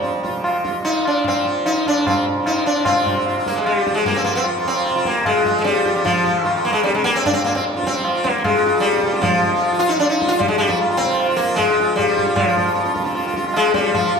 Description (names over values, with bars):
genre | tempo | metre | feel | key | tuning
indian classical, Hindustani | 151 BPM | 4/4 | straight | F raga kafi | A4 = 441 Hz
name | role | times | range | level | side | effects
sitar | melody | 0.0-14.2 s | F3 to F4 | -17 LUFS | equal | slapback echo
tanpura | drone | 0.0-14.2 s | F2 to F3 | -28 LUFS | right 2 dB | none
tabla | percussion | 0.0-14.1 s | none | -22 LUFS | left 2 dB | none
room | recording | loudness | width
wet recital hall reverb, RT60 1.4 s | none | -16 LUFS | side -5 dB against mid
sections
0.0-2.9 A section; 2.9-14.2 B section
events
speeding up 0.0-14.2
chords
none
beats
0.04 0.44 0.84 | 1.24 1.65 2.05 2.45 | 2.85 3.25 3.65 4.05 | 4.45 4.85 5.25 5.65 | 6.04 6.44 6.84 7.24 | 7.63 8.03 8.43 8.82 | 9.22 9.61 10.01 10.40 | 10.79 11.19 11.58 11.97 | 12.37 12.76 13.15 13.54 | 13.93